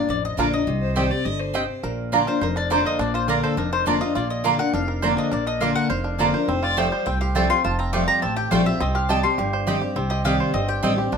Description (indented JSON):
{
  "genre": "bluegrass",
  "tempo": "207 BPM",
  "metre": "4/4",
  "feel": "straight",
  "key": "unclear",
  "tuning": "A4 = 440 Hz",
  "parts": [
    { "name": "mandolin", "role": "melody", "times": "0.0-11.0 s", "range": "A4 to D6", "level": "-26 LUFS", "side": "left 4 dB", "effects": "none" },
    { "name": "picked steel-string acoustic guitar", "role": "accompaniment", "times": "0.0-11.2 s", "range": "F2 to G4", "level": "-24 LUFS", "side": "left 2 dB", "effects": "none" },
    { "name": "upright bass", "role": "bass", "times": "0.0-11.2 s", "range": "F1 to C2", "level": "-27 LUFS", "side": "equal", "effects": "none" },
    { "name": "bluegrass banjo", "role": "melody", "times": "0.4-11.2 s", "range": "G3 to C5", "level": "-28 LUFS", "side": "right 4 dB", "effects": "none" },
    { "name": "mandolin", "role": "stabs", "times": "0.4-10.9 s", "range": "A3 to Bb5", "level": "-24 LUFS", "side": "right 6 dB", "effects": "none" },
    { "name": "rich fiddle", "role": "second line", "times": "0.8-1.8, 6.2-7.0 s", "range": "A4 to Eb5", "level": "-28 LUFS", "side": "left 3 dB", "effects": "none" }
  ],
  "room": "moderate studio reverb, RT60 0.6 s",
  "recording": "minimal, uncompressed stereo recording",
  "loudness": "-19 LUFS",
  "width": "side -6 dB against mid",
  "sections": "0.0-1.8 A section; 1.8-11.1 B section",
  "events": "none",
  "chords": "0.0 Bb; 0.7 Cm; 1.8 Bb; 6.5 Fadd9; 8.8 Cm"
}